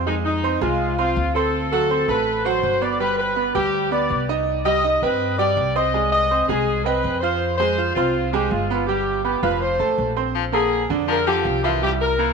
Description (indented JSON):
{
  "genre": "latin",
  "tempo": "163 BPM",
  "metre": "4/4",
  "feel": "straight",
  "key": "unclear",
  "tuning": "A4 = 439 Hz",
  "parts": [
    { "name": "bright concert grand piano", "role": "accompaniment", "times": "0.0-12.3 s", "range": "D3 to F6", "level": "-23 LUFS", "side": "right 10 dB", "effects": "none" },
    { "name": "upright bass", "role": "bass", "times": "0.0-12.3 s", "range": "F1 to G2", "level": "-27 LUFS", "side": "left 3 dB", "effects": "none" },
    { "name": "warm horn section", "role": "melody", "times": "0.1-12.3 s", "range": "Eb4 to Eb5", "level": "-21 LUFS", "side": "left 3 dB", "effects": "tape echo" },
    { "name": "bright baritone saxophone", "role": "second line", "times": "10.3-12.3 s", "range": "D3 to F3", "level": "-25 LUFS", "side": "left 13 dB", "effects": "none" }
  ],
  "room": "moderate echo chamber reverb, RT60 2.3 s",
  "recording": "1960s-style stereo with parts hard left and right",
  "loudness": "-18 LUFS",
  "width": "side -5 dB against mid",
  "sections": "0.0-10.4 A section; 10.4-12.3 B section",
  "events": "none",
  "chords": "0.1 Fm7; 1.5 D7; 3.0 G; 4.5 Cm; 5.9 Abmaj7/C; 7.4 Fm; 8.9 G; 9.6 F; 10.4 Bbadd9; 11.8 C7",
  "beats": "| 0.07 0.43 0.80 1.17 | 1.53 1.90 2.27 2.63 | 3.00 3.37 3.74 4.10 | 4.47 4.84 5.21 5.57 | 5.94 6.31 6.67 7.04 | 7.41 7.78 8.14 8.51 | 8.88 9.25 9.62 9.98 | 10.35 10.72 11.09 11.45 | 11.82 12.19"
}